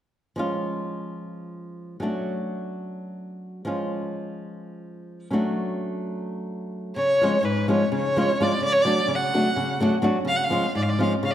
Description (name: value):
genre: balkan folk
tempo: 255 BPM (eighths)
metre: 7/8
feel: straight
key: unclear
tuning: A4 = 440 Hz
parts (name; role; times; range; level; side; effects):
- flamenco guitar; accompaniment; 0.4-11.3 s; G#2 to F#4; -25 LUFS; equal; none
- rich violin; melody; 7.0-11.3 s; B4 to F#5; -23 LUFS; equal; none
room: wet concert hall reverb, RT60 2.0 s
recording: none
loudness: -22 LUFS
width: side -11 dB against mid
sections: 0.4-7.0 A section; 7.0-11.3 B section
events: none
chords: 0.4 C#; 2.0 D; 3.7 C#; 5.3 D; 7.0 C#; 8.6 D/C#; 10.3 C#